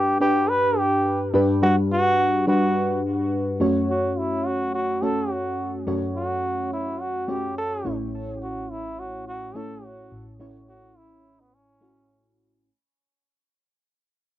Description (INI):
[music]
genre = pop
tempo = 106 BPM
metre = 4/4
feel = straight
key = F# phrygian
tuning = A4 = 440 Hz
[part]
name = brilliant trombone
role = melody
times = 0.0-12.4 s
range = B3 to B4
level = -24 LUFS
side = equal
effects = tape echo
[part]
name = mellow FM electric piano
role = accompaniment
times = 0.0-12.7 s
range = A1 to C#5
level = -24 LUFS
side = left 1 dB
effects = chorus, cassette tape
[sound]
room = wet booth ambience, RT60 0.2 s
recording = home recording on cassette, nothing above 7.4 kHz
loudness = -21 LUFS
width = side -14 dB against mid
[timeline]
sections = 0.0-3.6 A section; 3.6-12.7 B section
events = fade-out 3.6-12.7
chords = 0.0 G; 3.6 F#m; 7.8 A